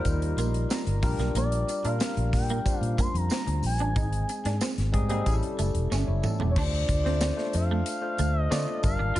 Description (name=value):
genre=polished 1980s jazz-funk pop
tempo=92 BPM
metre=4/4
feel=straight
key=unclear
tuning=A4 = 439 Hz
part: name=expressive synth lead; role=melody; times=0.0-9.2 s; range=C#5 to C6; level=-33 LUFS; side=equal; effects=chorus
part: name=barky tine electric piano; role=accompaniment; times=0.0-9.2 s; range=G3 to C6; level=-32 LUFS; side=left 3 dB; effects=lush chorus
part: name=fretless electric bass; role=bass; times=0.0-9.2 s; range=E1 to D3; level=-27 LUFS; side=equal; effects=none
part: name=modern studio drum kit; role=drums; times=0.0-9.2 s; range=crash cymbal, hi-hat, kick drum, snare drum, toms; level=-30 LUFS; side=equal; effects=none
part: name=tambourine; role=percussion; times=0.1-9.2 s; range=none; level=-43 LUFS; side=right 6 dB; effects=none
part: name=electric guitar at the edge of break-up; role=riff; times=0.4-9.2 s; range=A3 to F4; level=-36 LUFS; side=right 5 dB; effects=ensemble chorus
room=small room ambience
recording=nothing above 10.8 kHz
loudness=-24 LUFS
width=side -15 dB against mid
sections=0.0-6.6 A section; 6.6-9.2 B section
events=tine electric piano fill 0.0-1.4; drum fill 5.9-6.6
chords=0.0 F9sus4; 1.0 Bb6; 4.0 Abmaj7; 5.3 A7; 6.6 Dm7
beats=0.05 0.70 | 1.35 2.00 2.66 3.31 | 3.96 4.61 5.26 5.91 | 6.56 7.21 7.86 8.51 | 9.16